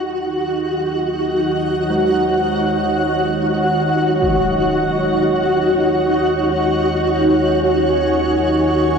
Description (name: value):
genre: dark ambient drone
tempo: free time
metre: none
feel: none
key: Eb minor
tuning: A4 = 440 Hz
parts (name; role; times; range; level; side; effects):
- granular cloud pad; sustained chords; 0.0-9.0 s; Eb4 to Ab5; -17 LUFS; equal; built-in reverb
- analog drone; drone; 0.3-9.0 s; Eb2 to Eb3; -26 LUFS; left 1 dB; chorus
- flickering grainy texture; texture; 0.0-9.0 s; Gb4; -20 LUFS; equal; built-in reverb
- bronze singing bowl; arpeggios; 1.9-8.1 s; Ab3; -29 LUFS; right 1 dB; diffuse ambient delay
- impact; percussion; 4.2-4.4 s; none; -30 LUFS; equal; low-pass filter on sfx
room: wet huge ambient reverb, RT60 8.3 s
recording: none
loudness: -15 LUFS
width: side -6 dB against mid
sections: 0.0-9.0 A section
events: fade-in on synth drone 0.0-9.0; fade-in on singing bowl 0.0-9.0; fade-in on impacts and reversed cymbals 0.0-9.0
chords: 0.0 Ebm